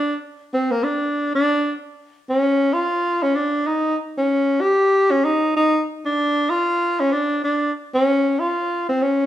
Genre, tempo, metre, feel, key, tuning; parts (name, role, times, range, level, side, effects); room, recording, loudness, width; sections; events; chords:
jazz; free time; A4 = 439 Hz
breathy tenor saxophone; solo; 0.0-9.3 s; Bb3 to G4; -18 LUFS; equal
wet large studio reverb, RT60 1.1 s; heard from further back in the room; -18 LUFS; side -12 dB against mid
0.0-9.3 A section
tenor saxophone solo 0.0-9.3